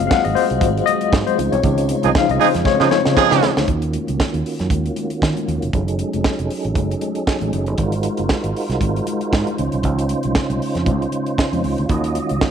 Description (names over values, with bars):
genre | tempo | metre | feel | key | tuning
disco | 117 BPM | 4/4 | swing 56% on 16ths | Db major | A4 = 437 Hz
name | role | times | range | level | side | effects
tine electric piano | accompaniment | 0.0-3.7 s | F3 to Gb5 | -18 LUFS | left 10 dB | medium tremolo
mellow tonewheel organ | sustained chords | 0.0-12.5 s | Db3 to Eb5 | -23 LUFS | right 2 dB | chorus vibrato, fast rotary speaker, low-pass filter
fingered electric bass | bass | 0.0-12.4 s | F1 to Eb3 | -22 LUFS | right 2 dB | none
tight funk drum kit | drums | 0.0-12.5 s | hi-hat, kick drum, snare drum | -21 LUFS | right 2 dB | none
congas | percussion | 0.0-12.5 s | none | -29 LUFS | left 11 dB | none
warm horn section | stabs | 2.0-3.6 s | F3 to Ab4 | -18 LUFS | right 13 dB | none
room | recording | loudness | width
light reverb | 1960s-style stereo with parts hard left and right | -16 LUFS | side -8 dB against mid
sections
0.0-3.7 A section; 3.7-12.5 B section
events
tine electric piano solo 0.0-3.7; band accent 1.6-3.7; drum fill 2.7-3.7; filter sweep on tonewheel organ 3.7-12.5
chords
0.0 Ab13; 1.4 Dbmaj9; 3.7 Ebm9; 5.7 Gbm6; 7.8 Ab13; 9.6 Dbmaj9; 11.9 Ebm9